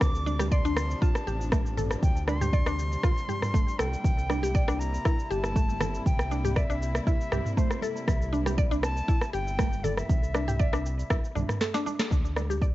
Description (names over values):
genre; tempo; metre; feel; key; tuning
afro house; 119 BPM; 4/4; straight; unclear; A4 = 439 Hz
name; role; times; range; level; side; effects
silver concert flute; melody; 0.0-11.6 s; C5 to D6; -36 LUFS; equal; analog delay
dark studio string section; sustained chords; 0.0-12.1 s; C3 to E4; -40 LUFS; left 1 dB; sidechain pumping, cassette tape
round analog bass; bass; 0.0-12.7 s; D1 to D2; -31 LUFS; equal; sidechain pumping
afro-pop drum kit; drums; 0.0-12.7 s; rim click, shaker, snare drum, toms; -32 LUFS; equal; cassette tape
electronic kick drum; drums; 0.0-12.7 s; none; -25 LUFS; equal; cassette tape
congas; percussion; 0.0-12.6 s; none; -39 LUFS; right 10 dB; none
mallet-like synth pluck; arpeggios; 0.3-12.7 s; A3 to D5; -33 LUFS; equal; chorus, phaser, sidechain pumping, cassette tape, analog delay
room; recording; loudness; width
small room ambience; home recording on cassette, nothing above 7.7 kHz; -25 LUFS; side -16 dB against mid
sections
0.0-12.1 A section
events
drop 0.0-12.1; drum fill 11.6-12.1; band accent 12.0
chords
0.0 Dm7; 4.0 C7; 12.1 N.C.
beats
| 0.01 0.52 1.02 1.52 | 2.03 2.53 3.04 3.54 | 4.04 4.55 5.05 5.56 | 6.06 6.57 7.07 7.57 | 8.08 8.58 9.09 9.59 | 10.10 10.60 11.10 11.61 | 12.11 12.62